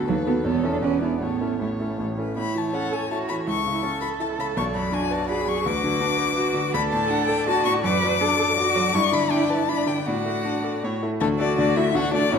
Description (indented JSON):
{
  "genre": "quick classical-period movement for piano quartet",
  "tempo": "162 BPM",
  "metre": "3/4",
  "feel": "straight",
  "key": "A major, D major from 6.7 s",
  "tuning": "A4 = 440 Hz",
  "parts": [
    { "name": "warm violin", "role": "melody", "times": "0.0-12.4 s", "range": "E4 to D6", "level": "-26 LUFS", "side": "left 8 dB", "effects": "none" },
    { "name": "warm violin", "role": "second line", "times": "0.0-12.4 s", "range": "A3 to D5", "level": "-30 LUFS", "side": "left 6 dB", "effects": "none" },
    { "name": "bright concert grand piano", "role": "accompaniment", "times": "0.0-12.4 s", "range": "E1 to B4", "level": "-25 LUFS", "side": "equal", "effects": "none" },
    { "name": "warm cello", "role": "second line", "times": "0.1-12.4 s", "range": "F#3 to B4", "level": "-27 LUFS", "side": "right 7 dB", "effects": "none" }
  ],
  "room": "wet recital hall reverb, RT60 1.9 s",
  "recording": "none",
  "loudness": "-21 LUFS",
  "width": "side -6 dB against mid",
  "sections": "0.0-2.4 A section; 2.4-11.2 B section; 11.2-12.4 C section",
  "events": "none",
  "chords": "0.1 B7/D#; 0.4 A/E; 0.8 E7; 1.2 A; 3.5 A/C#; 4.6 Bm; 5.7 Bm/D; 6.7 D; 7.8 D/F#; 8.9 Em7/G; 10.1 D/A; 10.8 A; 11.2 D"
}